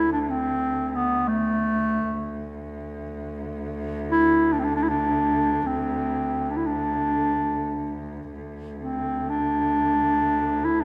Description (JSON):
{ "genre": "Turkish makam ensemble", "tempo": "free time", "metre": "none", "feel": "none", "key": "D makam nikriz", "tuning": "A4 = 440 Hz", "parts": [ { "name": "warm clarinet", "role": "melody", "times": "0.0-10.8 s", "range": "A3 to E4", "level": "-24 LUFS", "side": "equal", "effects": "none" }, { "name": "warm cello", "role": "drone", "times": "0.0-10.8 s", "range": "D2", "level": "-34 LUFS", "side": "equal", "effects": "none" } ], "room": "moderate concert hall reverb, RT60 1.9 s", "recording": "none", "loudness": "-24 LUFS", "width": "mono", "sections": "0.0-10.8 A section", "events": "none", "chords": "none" }